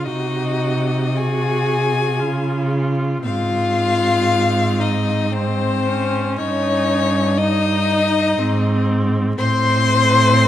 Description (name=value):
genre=classical, slow romantic movement for string quartet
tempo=58 BPM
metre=3/4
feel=uneven beats, rubato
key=unclear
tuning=A4 = 440 Hz
part: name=bright violin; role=melody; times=0.0-10.5 s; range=C5 to C6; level=-21 LUFS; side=left 7 dB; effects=none
part: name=warm violin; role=second line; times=0.0-10.5 s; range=C4 to C5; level=-22 LUFS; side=left 2 dB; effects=none
part: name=rich viola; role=accompaniment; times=0.0-10.5 s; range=C4 to Gb4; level=-24 LUFS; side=right 2 dB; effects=none
part: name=rich cello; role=bass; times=0.0-10.5 s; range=G2 to Db3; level=-20 LUFS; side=right 2 dB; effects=none
room=moderate concert hall reverb, RT60 1.9 s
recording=vinyl crackle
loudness=-16 LUFS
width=side -11 dB against mid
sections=0.0-10.5 A section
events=none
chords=0.1 Ab7/C; 2.2 Db; 3.2 Ab; 6.4 Eb7/G; 8.4 Ab; 9.4 Am